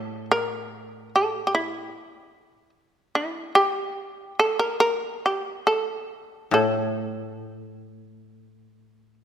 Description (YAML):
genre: japanese traditional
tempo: 63-75 BPM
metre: 4/4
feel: rubato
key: unclear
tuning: A4 = 440 Hz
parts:
  - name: shamisen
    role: melody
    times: 0.0-9.1 s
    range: E4 to Bb4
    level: -22 LUFS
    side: right 1 dB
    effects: none
  - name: koto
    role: accompaniment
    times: 0.0-9.2 s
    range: A2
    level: -28 LUFS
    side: left 2 dB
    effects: none
room: moderate scoring stage reverb, RT60 1.9 s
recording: none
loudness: -22 LUFS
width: side -9 dB against mid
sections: 0.0-9.2 A section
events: none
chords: none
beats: 0.68 1.51 2.31 | 3.12 3.95 4.79 5.66 | 6.54 7.41 8.27